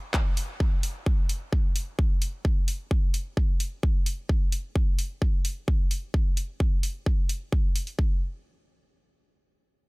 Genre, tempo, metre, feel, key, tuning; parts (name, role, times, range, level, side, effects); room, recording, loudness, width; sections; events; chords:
EDM; 130 BPM; 4/4; straight
big-room dance drum kit; drums; 0.1-8.0 s; handclaps, hi-hat; -33 LUFS; equal
electronic kick drum; drums; 0.1-8.1 s; -24 LUFS; equal
little or no reverb; -24 LUFS; side -30 dB against mid
0.0-8.0 A section; 8.0-9.9 B section